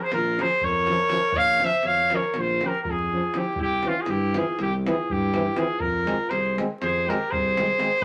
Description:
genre	balkan folk, Balkan brass band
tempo	242 BPM (eighths)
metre	9/8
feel	straight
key	Bb dorian sharp4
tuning	A4 = 439 Hz
part	warm trumpet	melody	0.0-8.0 s	F4 to F5	-26 LUFS	equal	none
part	warm alto saxophone	second line	0.0-8.0 s	Db4 to Db5	-33 LUFS	equal	none
part	mellow tuba	bass	0.1-8.0 s	Bb1 to G2	-32 LUFS	equal	none
part	davul	percussion	0.1-8.0 s	none	-37 LUFS	equal	none
part	mellow French horn	accompaniment	0.4-7.9 s	C4 to Db4	-38 LUFS	equal	none
part	warm euphonium	accompaniment	0.4-7.9 s	E3 to Ab3	-32 LUFS	equal	none
room	moderate studio reverb, RT60 0.6 s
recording	vinyl crackle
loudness	-24 LUFS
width	mono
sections	0.0-8.0 A section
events	none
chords	0.0 Bbm; 3.6 C; 5.8 Fm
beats	0.09 0.34 0.59 0.84 1.08 | 1.33 1.58 1.83 2.08 2.33 2.58 2.82 3.07 3.32 | 3.57 3.82 4.07 4.31 4.56 4.81 5.06 5.31 5.55 | 5.80 6.05 6.30 6.55 6.79 7.04 7.29 7.54 7.79 | 8.03

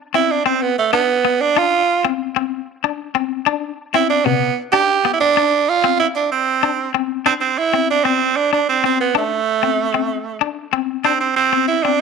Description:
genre	highlife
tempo	127 BPM (dotted quarters)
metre	12/8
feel	straight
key	C major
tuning	A4 = 440 Hz
part	raspy tenor saxophone	melody	0.1-12.0 s	A3 to G4	-16 LUFS	right 7 dB	none
part	electric guitar at the edge of break-up	accompaniment	0.1-12.0 s	C3 to D4	-20 LUFS	left 15 dB	tremolo
room	wet spring reverb, RT60 1.6 s, studio reverb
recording	1960s-style stereo with parts hard left and right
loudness	-15 LUFS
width	side -5 dB against mid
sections	0.0-7.3 A section; 7.3-12.0 B section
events	none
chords	0.0 Csus2; 0.6 Asus4 (rootless); 1.6 Csus2; 4.4 G; 5.4 Csus2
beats	0.14 0.61 1.09 | 1.57 2.04 2.52 2.99 | 3.47 3.94 4.42 4.89 | 5.36 5.84 6.31 6.78 | 7.26 7.73 8.20 8.68 | 9.15 9.62 10.09 10.57 | 11.04 11.51 11.99

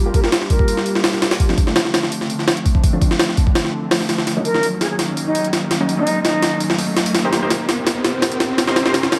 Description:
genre	drum and bass, jungle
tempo	167 BPM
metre	4/4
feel	straight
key	unclear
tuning	A4 = 438 Hz
part	airy breathy pad	sustained chords	0.0-9.2 s	D3 to C5	-26 LUFS	equal	chorus
part	riser	sound effects	0.9-9.2 s	none	-30 LUFS	equal	none
part	concert flute	melody	0.1-1.0, 4.5-6.6 s	Eb4 to Bb4	-26 LUFS	equal	low-pass filter, dub echo
part	orchestra-hit-like synth stab	stabs	0.1-8.9 s	F3 to C5	-28 LUFS	equal	built-in reverb, dub echo
part	jungle sampler-style drum kit	drums	0.1-9.2 s	hi-hat, kick drum, snare drum	-20 LUFS	equal	overdrive, studio reverb
room	moderate echo chamber reverb, RT60 1.3 s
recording	vinyl crackle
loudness	-18 LUFS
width	mono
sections	0.0-9.2 A section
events	build-up 0.0-9.2; filter sweep on synth stab 0.0-9.2; filter sweep on flute 0.0-9.2; riser 0.9-9.2; drum fill 4.3-9.2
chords	0.0 Gm7; 1.4 Dm7; 4.3 Ebm7; 7.1 Cm7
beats	0.32 0.68 1.04 | 1.40 1.76 2.12 2.48 | 2.83 3.19 3.55 3.91 | 4.27 4.63 4.99 5.35 | 5.71 6.07 6.43 6.79 | 7.15 7.51 7.87 8.22 | 8.58 8.94

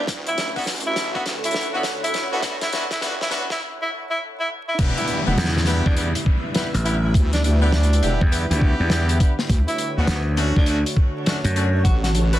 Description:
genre	glitch hop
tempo	102 BPM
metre	4/4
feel	swing 64% on 16ths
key	E dorian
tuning	A4 = 440 Hz
part	warm tenor saxophone	melody	0.0-12.4 s	B3 to B4	-26 LUFS	right 1 dB	dub echo
part	warm analog pad	sustained chords	0.0-12.4 s	D3 to C#5	-32 LUFS	right 1 dB	wide subtle chorus, sidechain pumping
part	wobble bass	bass	0.0-12.4 s	E1 to D2	-21 LUFS	equal	chorus, tube saturation, high-pass filter
part	granular cloud pad	texture	0.0-12.4 s	D3 to G5	-34 LUFS	left 1 dB	built-in reverb, sidechain pumping
part	electronic kick drum	drums	0.1-12.0 s	none	-18 LUFS	equal	none
part	warm soul drum kit	drums	0.1-12.4 s	crash cymbal, hi-hat, snare drum	-26 LUFS	left 1 dB	none
part	brilliant horn section	stabs	0.6-12.4 s	A3 to G4	-28 LUFS	left 1 dB	sidechain pumping, dub echo
part	downlifter	sound effects	4.8-9.5 s	none	-31 LUFS	left 1 dB	none
part	gritty slap bass	bass	5.4-11.8 s	A1 to F#2	-20 LUFS	equal	overdrive
room	light reverb, small room ambience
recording	dense, heavily limited modern master, vinyl crackle, high-pass filter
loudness	-18 LUFS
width	side -14 dB against mid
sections	0.0-4.8 A section; 4.8-12.4 B section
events	build-up 0.0-4.8; drum fill 0.0-3.6; break 3.6-4.8; drop 4.8-12.4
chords	0.1 Dmaj7; 4.8 Em7; 9.5 Dmaj7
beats	| 0.09 0.67 1.26 1.85 | 2.44 3.03 3.62 4.20 | 4.79 5.38 5.97 6.56 | 7.14 7.73 8.32 8.91 | 9.50 10.09 10.67 11.26 | 11.85

